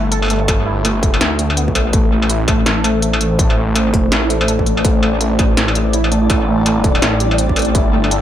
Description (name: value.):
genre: half-time drum and bass.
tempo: 165 BPM.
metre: 4/4.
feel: swing 60% on 16ths, half-time.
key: A minor.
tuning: A4 = 441 Hz.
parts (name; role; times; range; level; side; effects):
warbly dusty pluck; arpeggios; 0.0-8.2 s; G3 to A4; -19 LUFS; right 1 dB; lush chorus, tape echo.
phased detuned saw bass; bass; 0.0-8.2 s; G1 to D2; -18 LUFS; equal; phaser.
industrial drum kit; drums; 0.1-8.2 s; hi-hat, snare drum, struck metal; -19 LUFS; left 1 dB; small room ambience, dub echo.
electronic kick drum; drums; 0.5-7.8 s; none; -17 LUFS; equal; distortion, small room ambience.
dark analog pad; sustained chords; 2.8-8.2 s; A3 to G5; -23 LUFS; left 1 dB; chorus, sidechain pumping.
flickering grainy texture; texture; 2.4-8.2 s; D4 to D5; -25 LUFS; left 2 dB; built-in reverb.
room: light reverb.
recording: echo-heavy mix.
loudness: -12 LUFS.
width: side -11 dB against mid.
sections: 0.0-8.2 A section.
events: none.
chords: 0.0 G5; 1.9 Am7.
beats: 0.12 | 0.48 0.84 1.21 1.57 | 1.94 2.30 2.66 3.03 | 3.39 3.75 4.12 4.48 | 4.84 5.21 5.57 5.94 | 6.30 6.66 7.03 7.39 | 7.75 8.12.